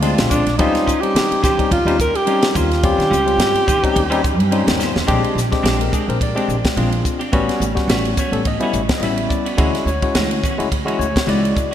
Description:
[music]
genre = electric jazz fusion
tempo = 107 BPM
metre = 4/4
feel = swing 56% on 16ths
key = Eb mixolydian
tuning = A4 = 439 Hz
[part]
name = barky tine electric piano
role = accompaniment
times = 0.0-11.7 s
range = C#3 to E5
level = -20 LUFS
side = left 3 dB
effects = medium stereo tremolo
[part]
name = clean electric guitar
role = stabs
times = 0.0-11.7 s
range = E3 to C5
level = -26 LUFS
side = right 1 dB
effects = ensemble chorus
[part]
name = upright bass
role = bass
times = 0.0-11.5 s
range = A1 to Eb3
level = -21 LUFS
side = right 1 dB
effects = none
[part]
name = crisp fusion drum kit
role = drums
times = 0.0-11.7 s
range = hi-hat, kick drum, ride cymbal, snare drum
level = -21 LUFS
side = equal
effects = gated reverb
[part]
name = breathy alto saxophone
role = melody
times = 0.3-4.5 s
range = D4 to Bb4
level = -18 LUFS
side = equal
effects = ping-pong delay
[sound]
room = moderate lush hall reverb, RT60 2.9 s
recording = bright 1980s-style digital production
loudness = -15 LUFS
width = side -10 dB against mid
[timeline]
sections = 0.0-5.1 A section; 5.1-11.7 B section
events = drum fill 4.8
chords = 0.0 Bb9; 0.6 Eb13; 5.1 Bb13; 7.3 A13; 9.6 Dmaj9#11

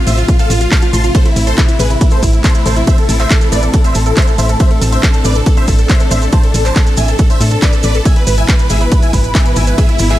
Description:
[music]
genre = uplifting trance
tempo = 139 BPM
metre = 4/4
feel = straight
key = A harmonic minor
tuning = A4 = 440 Hz
[part]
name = big supersaw lead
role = melody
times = 0.0-10.2 s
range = E4 to C6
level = -18 LUFS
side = right 1 dB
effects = phaser, sidechain pumping, ping-pong delay
[part]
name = wide unison pluck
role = second line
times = 0.0-10.2 s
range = E4 to C6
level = -25 LUFS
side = equal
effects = sidechain pumping
[part]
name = dark studio string section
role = sustained chords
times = 0.0-10.2 s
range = G#2 to F4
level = -21 LUFS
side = left 2 dB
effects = sidechain pumping
[part]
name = solid FM bass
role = bass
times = 0.1-10.2 s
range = G#1 to A2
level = -14 LUFS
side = equal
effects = sidechain pumping
[part]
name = punchy analog drum machine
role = drums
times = 0.1-10.2 s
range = handclaps, hi-hat, ride cymbal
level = -21 LUFS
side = equal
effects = none
[part]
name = maracas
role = percussion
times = 0.1-10.2 s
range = none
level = -25 LUFS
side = right 6 dB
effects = none
[part]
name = electronic kick drum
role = drums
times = 0.3-9.9 s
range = none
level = -11 LUFS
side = equal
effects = none
[sound]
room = little or no reverb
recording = dark, warm production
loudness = -9 LUFS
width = side -14 dB against mid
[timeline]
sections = 0.0-10.2 A section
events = none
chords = 0.0 F/A; 1.1 Am; 8.1 E/G#

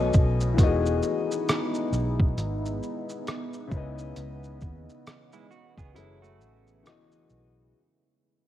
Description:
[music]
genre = lo-fi hip hop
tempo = 67 BPM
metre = 4/4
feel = swing 61% on 16ths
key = E major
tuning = A4 = 436 Hz
[part]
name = felt-muted upright piano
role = accompaniment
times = 0.0-7.8 s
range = B2 to E5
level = -29 LUFS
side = left 5 dB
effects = cassette tape, low-pass filter
[part]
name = deep dark ambient pad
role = sustained chords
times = 0.0-7.7 s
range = C#3 to D#5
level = -35 LUFS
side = right 1 dB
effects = chorus, built-in reverb, low-pass filter
[part]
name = vintage muted fingered electric bass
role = bass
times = 0.0-7.7 s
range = E1 to D#2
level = -29 LUFS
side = equal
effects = none
[part]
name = lo-fi sampler-style drum kit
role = drums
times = 0.1-7.5 s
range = hi-hat, kick drum, rim click, shaker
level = -24 LUFS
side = equal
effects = cassette tape
[part]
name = semi-hollow electric guitar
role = second line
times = 5.3-6.8 s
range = G#3 to G#4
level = -58 LUFS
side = right 7 dB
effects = spring reverb, low-pass filter
[sound]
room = light reverb, digital ambience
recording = home recording on cassette, vinyl crackle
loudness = -24 LUFS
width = side -12 dB against mid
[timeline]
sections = 0.0-7.7 A section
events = fade-out 0.0-7.7; break 6.0-7.7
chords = 0.0 B7; 0.6 Emaj7; 3.7 C#m9; 6.0 F#m7; 6.8 Emaj7

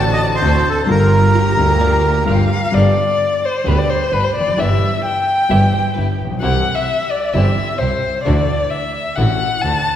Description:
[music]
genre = tango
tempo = 130 BPM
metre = 4/4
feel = rubato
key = G major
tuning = A4 = 440 Hz
[part]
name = bandoneon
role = melody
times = 0.0-2.2 s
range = A4 to Eb5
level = -17 LUFS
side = right 2 dB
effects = none
[part]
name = dark violin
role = second line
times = 0.0-10.0 s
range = B4 to Bb5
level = -18 LUFS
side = left 3 dB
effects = none
[part]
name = warm concert grand piano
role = accompaniment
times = 0.0-9.8 s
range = G1 to G4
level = -21 LUFS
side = left 2 dB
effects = none
[part]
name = rich studio string section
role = stabs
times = 0.0-9.8 s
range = Bb3 to G4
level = -28 LUFS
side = right 1 dB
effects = none
[part]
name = rich double bass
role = bass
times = 0.0-9.8 s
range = F1 to D2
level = -18 LUFS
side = right 1 dB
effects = none
[part]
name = hollow-body jazz guitar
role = second line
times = 1.4-2.7, 5.5-6.3 s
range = G4 to E5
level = -27 LUFS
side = right 3 dB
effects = none
[sound]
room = wet scoring stage reverb, RT60 1.9 s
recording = recorded in a church or concert hall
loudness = -13 LUFS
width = side -10 dB against mid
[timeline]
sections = 0.0-2.7 A section; 2.7-10.0 B section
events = violin solo 2.7-10.0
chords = 0.0 D7; 0.9 Gm7; 2.7 G; 4.6 Em/G; 6.4 C; 8.3 Dadd9

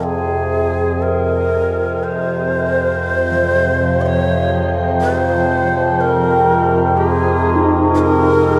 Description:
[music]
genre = dark ambient drone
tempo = 60 BPM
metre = 4/4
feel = straight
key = F minor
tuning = A4 = 437 Hz
[part]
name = breathy bright long shakuhachi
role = melody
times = 0.0-8.6 s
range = Ab4 to Eb5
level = -20 LUFS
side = equal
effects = shimmer reverb, analog delay
[part]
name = sweeping resonant pad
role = sustained chords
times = 0.0-8.6 s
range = C4 to Eb5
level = -27 LUFS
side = equal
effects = chorus, shimmer reverb
[part]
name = overtone-sweeping drone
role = drone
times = 0.0-8.6 s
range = F2 to C3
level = -18 LUFS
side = equal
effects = chorus, built-in reverb
[part]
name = quartz singing bowl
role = texture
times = 0.0-8.6 s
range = C6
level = -44 LUFS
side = equal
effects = none
[part]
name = gamelan-type bronze metallophone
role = arpeggios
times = 3.3-8.6 s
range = F3 to Eb4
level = -26 LUFS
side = equal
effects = shimmer reverb, analog delay
[sound]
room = wet cathedral reverb, RT60 6.0 s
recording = dreamy mix soaked in reverb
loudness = -16 LUFS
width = mono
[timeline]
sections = 0.0-8.6 A section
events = fade-in on analog synth pad 0.0-8.6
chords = 0.0 Fm7

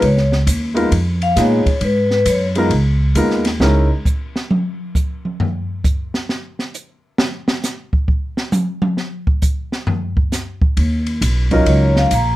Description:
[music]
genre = jazz, small-group swing and bop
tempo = 134 BPM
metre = 4/4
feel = swing 66% on 8ths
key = Db mixolydian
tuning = A4 = 440 Hz
[part]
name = vibraphone with medium mallets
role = melody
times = 0.0-2.5, 11.5-12.4 s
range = Cb5 to Bb5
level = -17 LUFS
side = left 2 dB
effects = none
[part]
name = upright bass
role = bass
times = 0.0-3.9, 10.6-12.4 s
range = Bb1 to Bb2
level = -16 LUFS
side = equal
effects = none
[part]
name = open jazz drum kit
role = drums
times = 0.0-12.2 s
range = hi-hat, kick drum, ride cymbal, snare drum, toms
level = -19 LUFS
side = equal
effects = none
[part]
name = warm baby grand piano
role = accompaniment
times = 0.7-3.9, 11.5-12.1 s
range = Gb3 to Bb4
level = -17 LUFS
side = equal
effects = none
[sound]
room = light reverb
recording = none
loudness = -15 LUFS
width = side -16 dB against mid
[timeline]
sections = 0.0-12.4 A section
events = vibraphone solo 0.0-12.4; drum solo 3.6-10.8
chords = 0.0 Db13; 1.8 Abm7; 2.7 Db13; 3.6 Dbm69; 5.4 N.C.; 10.8 Ebm7

